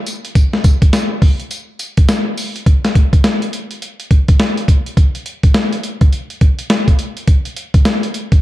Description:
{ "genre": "R&B", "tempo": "104 BPM", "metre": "4/4", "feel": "swing 62% on 16ths", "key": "none", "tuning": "none", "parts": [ { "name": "dusty soul sampler-style drum kit", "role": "drums", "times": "0.1-8.4 s", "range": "hi-hat, kick drum, snare drum, tambourine", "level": "-12 LUFS", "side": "equal", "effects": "none" } ], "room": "light reverb", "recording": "dark, warm production", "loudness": "-12 LUFS", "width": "side -16 dB against mid", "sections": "0.0-2.7 A section; 2.7-5.0 B section; 5.0-8.4 C section", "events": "none", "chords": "none", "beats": "| 0.35 0.93 1.51 2.09 | 2.66 3.24 3.82 4.39 | 4.97 5.55 6.12 6.70 | 7.28 7.86" }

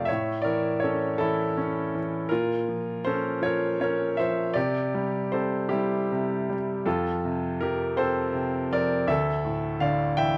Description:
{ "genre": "classical, lyrical solo piano", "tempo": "54 BPM (dotted quarters)", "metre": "6/8", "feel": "rubato", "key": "F major", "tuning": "A4 = 440 Hz", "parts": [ { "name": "bright grand piano", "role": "solo", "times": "0.0-10.4 s", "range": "D2 to G5", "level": "-27 LUFS", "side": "equal", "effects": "none" } ], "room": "moderate recital hall reverb, RT60 1.4 s", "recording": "close, detailed microphones", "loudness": "-27 LUFS", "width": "mono", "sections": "0.0-10.4 A section", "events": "none", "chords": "0.1 A; 2.3 Bbmadd9; 4.6 C; 6.9 F; 9.1 Dsus2", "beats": "| 0.08 1.19 | 2.30 3.42 | 4.56 5.71 | 6.86 7.97 | 9.09 10.18" }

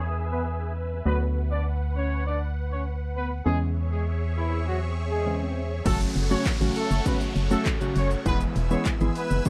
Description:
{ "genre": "dance-pop", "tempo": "100 BPM", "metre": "4/4", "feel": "straight", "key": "F# minor", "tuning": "A4 = 440 Hz", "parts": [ { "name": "direct-recorded clean electric guitar", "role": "melody", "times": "0.0-0.7 s", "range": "G#4", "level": "-37 LUFS", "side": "equal", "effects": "ensemble chorus, low-pass filter, slapback echo" }, { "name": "glassy wavetable pluck", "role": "accompaniment", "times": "0.0-9.5 s", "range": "C#3 to G#4", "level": "-31 LUFS", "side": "equal", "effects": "chorus, sidechain pumping, low-pass filter" }, { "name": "supersaw pad", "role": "sustained chords", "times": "0.0-9.5 s", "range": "G#4 to E6", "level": "-40 LUFS", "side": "equal", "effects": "phaser, sidechain pumping, low-pass filter" }, { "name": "organ-like FM bass", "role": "bass", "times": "0.0-9.4 s", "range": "E1 to E2", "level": "-28 LUFS", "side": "equal", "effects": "sidechain pumping" }, { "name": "downlifter and swell", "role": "sound effects", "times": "0.0-9.5 s", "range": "none", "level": "-41 LUFS", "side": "equal", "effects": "none" }, { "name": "mellow horn section", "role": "melody", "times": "0.3-9.5 s", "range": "E3 to D5", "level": "-33 LUFS", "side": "equal", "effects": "sidechain pumping, low-pass filter, slapback echo" }, { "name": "punchy analog drum machine", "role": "drums", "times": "5.9-9.5 s", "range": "crash cymbal, handclaps, hi-hat, kick drum, shaker", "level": "-29 LUFS", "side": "equal", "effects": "none" } ], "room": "little or no reverb", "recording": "dry, close 1970s-style studio recording", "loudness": "-26 LUFS", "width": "mono", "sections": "0.0-5.9 A section; 5.9-9.5 B section", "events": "filter sweep 0.0-5.9; swell 1.1-5.9; drop 5.9-9.5", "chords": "0.0 E; 1.1 Bm/D; 3.5 C#m/E; 5.9 F#m; 8.3 E", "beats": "0.46 | 1.06 1.66 2.26 2.86 | 3.46 4.06 4.66 5.26 | 5.86 6.46 7.06 7.66 | 8.26 8.86 9.46" }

